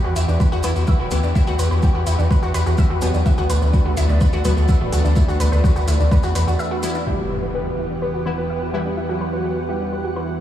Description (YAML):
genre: melodic techno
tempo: 126 BPM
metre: 4/4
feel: straight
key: E minor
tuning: A4 = 440 Hz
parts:
  - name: lush unison pad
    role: sustained chords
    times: 0.0-10.4 s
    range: E3 to F#5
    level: -27 LUFS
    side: right 1 dB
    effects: chorus, sidechain pumping
  - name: analog pluck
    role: arpeggios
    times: 0.0-10.4 s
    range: D4 to E5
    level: -26 LUFS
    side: left 1 dB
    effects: chorus, sidechain pumping, diffuse ambient delay
  - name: gritty driven synth bass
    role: bass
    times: 0.0-6.6 s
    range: D1 to E2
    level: -18 LUFS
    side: equal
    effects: sidechain pumping
  - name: analog drone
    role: drone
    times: 0.0-10.4 s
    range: E2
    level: -31 LUFS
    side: right 1 dB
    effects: none
  - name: electronic hi-hat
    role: drums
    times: 0.2-6.9 s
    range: none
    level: -34 LUFS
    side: equal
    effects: sidechain pumping on hats, small room reverb
  - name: maracas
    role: percussion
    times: 0.2-7.0 s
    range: none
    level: -35 LUFS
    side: right 2 dB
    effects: none
  - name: electronic kick drum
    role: drums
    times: 0.4-6.2 s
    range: none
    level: -16 LUFS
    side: equal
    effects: small room reverb
  - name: synth brass stab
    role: stabs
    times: 0.6-8.8 s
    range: B2 to E4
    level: -30 LUFS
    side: left 2 dB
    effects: none
  - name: fat analog lead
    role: melody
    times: 7.1-10.4 s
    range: E4 to B4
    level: -26 LUFS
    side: equal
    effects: sidechain pumping, diffuse ambient delay
  - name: impact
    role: sound effects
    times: 7.1-9.0 s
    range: none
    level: -30 LUFS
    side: equal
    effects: none
room: moderate cathedral reverb, RT60 4.8 s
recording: dreamy mix soaked in reverb, small room ambience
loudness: -16 LUFS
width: side -11 dB against mid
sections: 0.0-7.1 A section; 7.1-10.4 B section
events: break 6.6-7.1; impact 7.1-9.0; filter sweep on synth pluck 7.1-10.4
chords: 0.0 Emadd9; 3.3 Bm7/D; 7.1 Emadd9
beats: 0.40 0.88 | 1.35 1.83 2.31 2.78 | 3.26 3.73 4.21 4.69 | 5.16 5.64 6.12 6.59 | 7.07 7.54 8.02 8.50 | 8.97 9.45 9.93 10.40